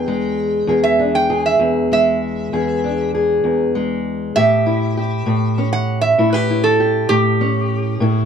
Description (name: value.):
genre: acoustic country blues, solo or duo.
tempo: 65 BPM (dotted quarters).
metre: 12/8.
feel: straight.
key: E mixolydian.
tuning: A4 = 440 Hz.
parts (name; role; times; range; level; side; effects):
metal-body resonator slide guitar; melody; 0.0-8.3 s; G4 to G5; -17 LUFS; right 4 dB; none.
fingerpicked steel-string acoustic guitar; accompaniment; 0.0-8.3 s; E2 to G#4; -17 LUFS; left 2 dB; none.
room: light reverb.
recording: dark, warm production.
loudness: -15 LUFS.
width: side -7 dB against mid.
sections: 0.0-8.3 A section.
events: resonator guitar played with a steel bar solo 0.0-8.3.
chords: 0.0 E7; 4.3 A7.